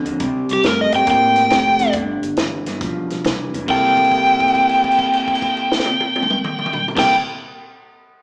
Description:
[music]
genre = electric blues shuffle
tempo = 138 BPM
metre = 4/4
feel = swing 66% on 8ths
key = C mixolydian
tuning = A4 = 439 Hz
[part]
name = electric guitar through a small old amp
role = riff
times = 0.0-7.1 s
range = F2 to A4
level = -25 LUFS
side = equal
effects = none
[part]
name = upright bass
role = bass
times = 0.0-7.1 s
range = F1 to A2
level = -34 LUFS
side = equal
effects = none
[part]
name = compact cocktail drum kit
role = drums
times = 0.1-7.1 s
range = crash cymbal, hi-hat, kick drum, snare drum, toms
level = -26 LUFS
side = equal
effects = none
[part]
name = overdriven slide guitar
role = melody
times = 0.5-7.1 s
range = G4 to G5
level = -18 LUFS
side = equal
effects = none
[sound]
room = wet large studio reverb, RT60 1.3 s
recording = band playing live in one room, small speaker sound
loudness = -17 LUFS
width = mono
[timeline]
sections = 0.0-3.7 A section; 3.7-7.2 B section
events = held note 3.7-6.9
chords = 0.2 C5; 1.9 G6; 3.7 C6

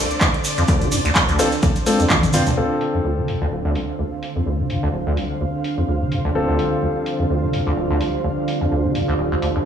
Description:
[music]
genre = acid house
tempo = 127 BPM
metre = 4/4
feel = swing 56% on 16ths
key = D minor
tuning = A4 = 440 Hz
[part]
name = string machine, full ensemble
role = sustained chords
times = 0.0-9.7 s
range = D3 to F5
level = -24 LUFS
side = right 1 dB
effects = ensemble chorus, sidechain pumping
[part]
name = deep acid bass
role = riff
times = 0.0-9.6 s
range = D1 to D3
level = -22 LUFS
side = equal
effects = tube saturation, wide subtle chorus, vintage 12-bit sampler grit, tape echo
[part]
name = booming analog drum machine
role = drums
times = 0.1-9.5 s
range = handclaps, hi-hat, ride cymbal, toms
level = -23 LUFS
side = equal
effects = low-pass filter on hats, low-pass filter on cymbals, low-pass filter on snare, low-pass filter on toms
[part]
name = tube shaker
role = percussion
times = 0.1-2.5 s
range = none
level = -28 LUFS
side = right 3 dB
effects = none
[part]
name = electronic kick drum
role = drums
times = 0.2-2.2 s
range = none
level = -20 LUFS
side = equal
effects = none
[part]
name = warm grand piano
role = stabs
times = 1.4-9.7 s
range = C4 to C5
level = -24 LUFS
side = left 2 dB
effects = low-pass filter, tape echo
[part]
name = deep dark ambient pad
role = texture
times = 6.0-9.7 s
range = D4 to C5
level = -27 LUFS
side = right 3 dB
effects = chorus, built-in reverb, sidechain pumping
[sound]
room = light reverb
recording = studio reverb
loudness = -17 LUFS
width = side -8 dB against mid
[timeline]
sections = 0.0-2.6 A section; 2.6-9.7 B section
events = drop 0.0-2.6; drum fill 1.9-2.6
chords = 0.0 Dm7

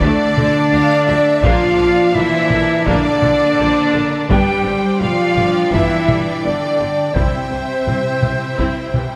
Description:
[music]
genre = cinematic, epic orchestral film score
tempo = 84 BPM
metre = 4/4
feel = straight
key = unclear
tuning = A4 = 441 Hz
[part]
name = warm symphonic violin section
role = melody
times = 0.0-9.2 s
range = C5 to G5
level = -28 LUFS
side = equal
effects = none
[part]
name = bright silver concert flute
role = second line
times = 0.0-9.2 s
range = C5 to G5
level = -24 LUFS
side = equal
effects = none
[part]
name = clear symphonic violin section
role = second line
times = 0.0-9.2 s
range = Bb4 to F5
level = -30 LUFS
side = equal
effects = none
[part]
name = rich studio viola section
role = accompaniment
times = 0.0-9.0 s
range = D3 to E4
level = -28 LUFS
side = equal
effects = none
[part]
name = clear symphonic string section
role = sustained chords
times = 0.0-9.2 s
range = G3 to A5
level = -29 LUFS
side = equal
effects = none
[part]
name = mellow French horn section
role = sustained chords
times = 0.0-9.2 s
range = C4 to G4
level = -19 LUFS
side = equal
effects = none
[part]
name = clear symphonic double bass section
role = bass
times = 0.0-9.0 s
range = G1 to D2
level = -27 LUFS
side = equal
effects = none
[part]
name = rich symphonic cello section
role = bass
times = 0.0-9.2 s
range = C3 to G3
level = -25 LUFS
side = equal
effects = none
[part]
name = taiko ensemble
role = drums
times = 0.0-9.2 s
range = none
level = -24 LUFS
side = equal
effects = none
[sound]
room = wet scoring stage reverb, RT60 1.8 s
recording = none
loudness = -15 LUFS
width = mono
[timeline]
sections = 0.0-9.2 A section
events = none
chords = 0.0 Dm; 1.4 Bb; 4.3 G; 7.2 C

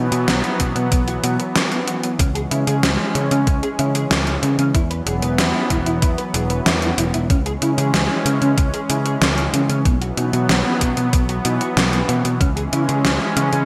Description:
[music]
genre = synthwave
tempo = 94 BPM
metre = 4/4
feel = straight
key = C# minor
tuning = A4 = 440 Hz
[part]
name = warm analog pad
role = sustained chords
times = 0.0-13.7 s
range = E3 to C#4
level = -26 LUFS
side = equal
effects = chorus, sidechain pumping
[part]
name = mellow electric guitar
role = riff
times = 0.0-13.6 s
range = B3 to B4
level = -28 LUFS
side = equal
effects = ensemble chorus, digital delay
[part]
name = overdriven picked electric bass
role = bass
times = 0.0-13.7 s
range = E1 to C#3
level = -23 LUFS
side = equal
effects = sidechain pumping
[part]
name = gated 80s digital drum machine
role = drums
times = 0.1-13.7 s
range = hi-hat, snare drum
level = -23 LUFS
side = equal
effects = gated reverb, gated reverb snare, overdrive
[part]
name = electronic kick drum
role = drums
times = 0.6-12.5 s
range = none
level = -21 LUFS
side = equal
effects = overdrive
[sound]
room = moderate lush hall reverb, RT60 2.0 s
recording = bright 1980s-style digital production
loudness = -19 LUFS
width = mono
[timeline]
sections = 0.0-13.7 A section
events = none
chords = 0.0 Bsus4; 2.2 C#m; 4.7 Esus2; 7.3 C#m; 9.9 Bsus4; 12.4 C#m

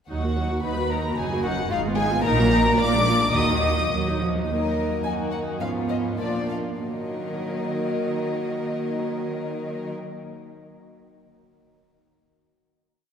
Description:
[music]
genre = quick classical-period movement for string orchestra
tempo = 96-113 BPM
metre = 2/4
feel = rubato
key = Eb minor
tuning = A4 = 440 Hz
[part]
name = dark chamber violin section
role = melody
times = 0.1-9.9 s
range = D5 to Eb6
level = -28 LUFS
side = left 2 dB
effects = none
[part]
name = warm studio violin section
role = second line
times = 0.1-9.9 s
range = Db4 to Eb5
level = -30 LUFS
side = left 2 dB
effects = none
[part]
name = rich chamber viola section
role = accompaniment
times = 0.1-9.9 s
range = Eb3 to Gb4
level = -28 LUFS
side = right 1 dB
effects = none
[part]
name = dark chamber double bass section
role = bass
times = 0.1-4.4 s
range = Gb1 to Eb2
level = -27 LUFS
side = right 1 dB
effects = none
[part]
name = warm chamber cello section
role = bass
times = 0.1-9.9 s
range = Eb2 to Gb3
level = -29 LUFS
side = right 2 dB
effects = none
[sound]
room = wet church reverb, RT60 3.4 s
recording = recorded in a church or concert hall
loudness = -22 LUFS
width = side -8 dB against mid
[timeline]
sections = 0.1-4.5 A section; 4.5-6.8 coda; 6.8-9.2 final chord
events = slowing down 3.9-6.8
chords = 0.1 Ebm; 1.2 Ebm/Gb; 1.7 Fm7b5/Ab; 2.3 Ebm/Bb; 2.8 Bb7; 3.4 Ebm; 5.0 Ebm/Gb; 5.6 Fdim/Ab; 6.2 Bb; 6.8 Ebm

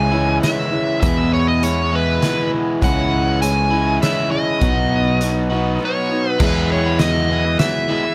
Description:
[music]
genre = folk rock and heartland rock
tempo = 100 BPM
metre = 3/4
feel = straight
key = E major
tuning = A4 = 441 Hz
[part]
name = dark smooth lead guitar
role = melody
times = 0.0-8.1 s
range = B4 to G#5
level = -23 LUFS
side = equal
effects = overdrive
[part]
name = picked steel-string acoustic guitar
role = accompaniment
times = 0.0-8.1 s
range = E2 to F#4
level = -25 LUFS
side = equal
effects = none
[part]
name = pedal harmonium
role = sustained chords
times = 0.0-6.4 s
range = D#4 to G#5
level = -34 LUFS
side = equal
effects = none
[part]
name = crunchy overdriven guitar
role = riff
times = 0.0-8.1 s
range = E2 to F#4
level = -27 LUFS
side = equal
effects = none
[part]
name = picked electric bass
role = bass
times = 0.0-7.6 s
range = B1 to E2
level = -22 LUFS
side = equal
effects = none
[part]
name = loose indie drum kit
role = drums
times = 0.4-7.7 s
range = crash cymbal, hi-hat, kick drum, snare drum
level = -25 LUFS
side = equal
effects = none
[sound]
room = little or no reverb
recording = none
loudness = -18 LUFS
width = mono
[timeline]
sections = 0.0-6.4 A section; 6.4-8.1 B section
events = none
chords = 0.0 C#m; 1.0 E; 2.8 C#m; 4.6 B; 6.4 Eadd9

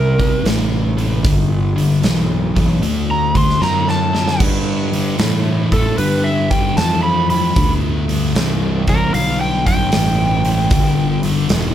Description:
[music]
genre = blues rock power trio and southern rock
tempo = 76 BPM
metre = 4/4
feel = swing 67% on 8ths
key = G mixolydian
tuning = A4 = 440 Hz
[part]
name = overdriven slide guitar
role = melody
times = 0.0-11.2 s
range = A4 to C6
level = -19 LUFS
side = right 1 dB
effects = none
[part]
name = thick fuzz guitar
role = riff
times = 0.0-11.7 s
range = G2 to B3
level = -19 LUFS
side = left 1 dB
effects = distortion
[part]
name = fuzz fingered electric bass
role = bass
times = 0.0-11.7 s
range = E1 to A2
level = -19 LUFS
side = equal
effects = overdrive
[part]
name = huge arena drum kit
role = drums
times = 0.2-11.7 s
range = crash cymbal, hi-hat, kick drum, snare drum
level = -20 LUFS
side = right 1 dB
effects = none
[sound]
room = light reverb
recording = band playing live in one room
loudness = -14 LUFS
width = side -11 dB against mid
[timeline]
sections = 0.0-4.4 A section; 4.4-11.7 B section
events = drum fill 3.6-4.4; electric slide guitar solo 4.4-11.7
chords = 0.0 C5; 1.2 G; 2.8 D; 4.4 G5

